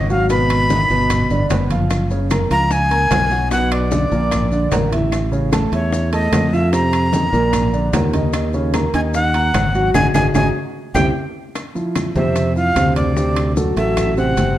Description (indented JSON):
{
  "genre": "Afro-Cuban jazz",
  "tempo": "149 BPM",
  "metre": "4/4",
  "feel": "straight",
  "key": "F major from 11.6 s",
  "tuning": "A4 = 440 Hz",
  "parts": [
    { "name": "breathy bright jazz flute", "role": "melody", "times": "0.0-14.6 s", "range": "C#5 to Cb6", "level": "-20 LUFS", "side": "equal", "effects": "none" },
    { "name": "warm concert grand piano", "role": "accompaniment", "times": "0.0-14.5 s", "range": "Bb2 to B5", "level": "-20 LUFS", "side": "right 1 dB", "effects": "none" },
    { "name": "modern bright fingered electric bass", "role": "bass", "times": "0.0-14.6 s", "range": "Gb1 to F2", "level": "-20 LUFS", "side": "equal", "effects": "none" },
    { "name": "maracas", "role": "percussion", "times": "0.1-14.6 s", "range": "none", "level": "-37 LUFS", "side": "left 6 dB", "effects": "none" },
    { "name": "bongos", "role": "percussion", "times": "0.3-14.6 s", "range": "none", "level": "-27 LUFS", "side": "left 4 dB", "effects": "none" },
    { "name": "congas", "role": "percussion", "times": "0.3-14.6 s", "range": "none", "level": "-24 LUFS", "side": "left 2 dB", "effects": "none" },
    { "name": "timbales", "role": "percussion", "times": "0.3-14.6 s", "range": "none", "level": "-27 LUFS", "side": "right 5 dB", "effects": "none" },
    { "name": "claves", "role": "percussion", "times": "0.5-14.2 s", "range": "none", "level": "-35 LUFS", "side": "left 4 dB", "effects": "none" }
  ],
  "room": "moderate large studio reverb, RT60 1.2 s",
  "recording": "dark, warm production",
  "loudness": "-15 LUFS",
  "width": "side -13 dB against mid",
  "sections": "0.0-11.6 A section; 11.6-14.6 B section",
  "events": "band accent 9.9-11.6; drum fill 11.0-11.6; flute solo 11.6-14.6",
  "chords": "0.3 Abm; 1.1 G7; 1.9 Gbmaj7; 3.5 Cbm; 4.3 Bb; 5.1 A; 6.7 F5; 7.5 Bb; 8.3 Ebm7; 9.9 Ab5; 10.8 C; 11.6 F5; 13.2 D7"
}